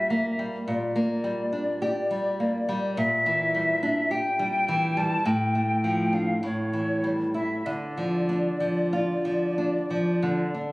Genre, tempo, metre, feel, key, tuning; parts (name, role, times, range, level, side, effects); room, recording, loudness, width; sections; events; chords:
romantic duo for flute and classical guitar; 46-53 BPM; 4/4; rubato; D minor; A4 = 440 Hz
silver concert flute; melody; 0.0-10.7 s; C#5 to A5; -27 LUFS; left 1 dB
nylon-string guitar; accompaniment; 0.0-10.7 s; A2 to G4; -26 LUFS; equal
moderate plate reverb, RT60 3.6 s; recorded on a phone in the room, studio reverb, faint mains hum; -23 LUFS; side -21 dB against mid
0.0-10.7 A section
0.0 Gm/Bb; 3.0 Em7b5/Bb; 5.3 Dm/A; 6.4 A7; 7.7 Dm